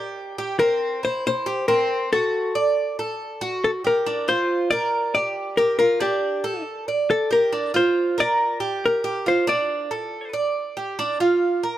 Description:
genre	latin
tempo	139 BPM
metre	4/4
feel	straight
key	G minor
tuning	A4 = 440 Hz
part	hollow-body jazz guitar	melody	0.0-10.3 s	G4 to D5	-22 LUFS	left 2 dB	none
part	Cuban tres	arpeggios	0.0-11.8 s	C4 to D5	-23 LUFS	right 3 dB	none
room	light reverb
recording	close, detailed microphones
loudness	-20 LUFS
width	side -12 dB against mid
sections	0.0-4.1 A section; 4.1-11.8 B section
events	none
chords	0.0 G5; 0.6 C; 2.3 D; 4.1 Bbadd9/D; 4.9 Gm; 5.8 G5; 6.7 D5; 7.5 Bbadd9/D; 8.4 Gm; 9.3 Dm7; 10.1 D5; 11.0 Dm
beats	0.16 | 0.59 1.03 1.46 1.89 | 2.33 2.76 3.19 3.63 | 4.06 4.50 4.93 5.36 | 5.79 6.23 6.66 7.09 | 7.53 7.96 8.39 8.82 | 9.26 9.69 10.12 10.55 | 10.98 11.42

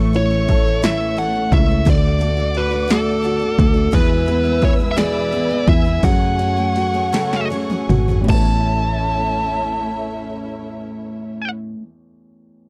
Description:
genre	six-eight pop ballad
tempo	51-58 BPM (dotted quarters)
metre	6/8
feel	straight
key	A major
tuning	A4 = 440 Hz
part	dark upright piano	accompaniment	0.0-12.7 s	A1 to C#5	-26 LUFS	equal	none
part	warm studio string section	sustained chords	0.0-11.5 s	A3 to E6	-30 LUFS	equal	none
part	picked steel-string acoustic guitar	arpeggios	0.0-11.9 s	E2 to A4	-30 LUFS	equal	none
part	fingered electric bass	bass	0.0-11.5 s	G#1 to F#2	-23 LUFS	equal	none
part	punchy analog drum machine	drums	0.1-8.5 s	crash cymbal, kick drum, ride cymbal, snare drum, toms	-20 LUFS	equal	none
part	bluesy overdriven lead guitar	melody	0.2-11.5 s	A4 to A5	-24 LUFS	equal	distortion
room	little or no reverb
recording	dry, close 1970s-style studio recording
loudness	-18 LUFS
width	mono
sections	0.0-8.3 A section; 8.3-12.7 B section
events	slowing down 3.9-8.3; drum fill 7.1-8.3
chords	0.0 A; 1.9 D; 3.9 E; 6.0 F#madd9; 8.3 A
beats	0.83 | 1.86 2.90 | 3.93 4.97 | 6.04 7.13 | 8.29 9.46 | 10.64 11.82

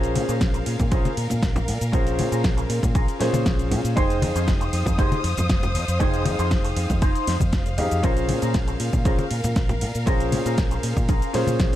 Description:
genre	nu-disco, nu disco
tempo	118 BPM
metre	4/4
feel	straight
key	unclear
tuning	A4 = 440 Hz
part	warm concert grand piano	accompaniment	0.0-11.8 s	Db4 to G5	-27 LUFS	equal	sidechain pumping, analog delay
part	warm symphonic violin section	sustained chords	0.0-11.8 s	Bb4 to Eb6	-32 LUFS	left 1 dB	sidechain pumping
part	electric guitar with an envelope filter	riff	0.0-11.8 s	Db4 to C5	-31 LUFS	equal	wide subtle chorus, analog delay
part	fingered electric bass with an envelope filter	bass	0.0-11.8 s	F1 to Bb2	-25 LUFS	equal	none
part	pop drum kit	drums	0.0-11.8 s	hi-hat, ride cymbal, shaker, snare drum	-31 LUFS	equal	overdrive
part	congas	percussion	0.2-11.6 s	none	-29 LUFS	left 2 dB	none
part	electronic kick drum	drums	0.4-11.7 s	none	-22 LUFS	equal	overdrive
room	little or no reverb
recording	dark, warm production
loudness	-20 LUFS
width	side -13 dB against mid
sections	0.0-11.8 A section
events	none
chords	0.0 Bbm7; 4.0 Fm7; 8.0 Bbm7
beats	0.41 0.92 1.43 | 1.93 2.44 2.95 3.46 | 3.97 4.48 4.99 5.49 | 6.00 6.51 7.02 7.53 | 8.04 8.54 9.05 9.56 | 10.07 10.58 11.09 11.60

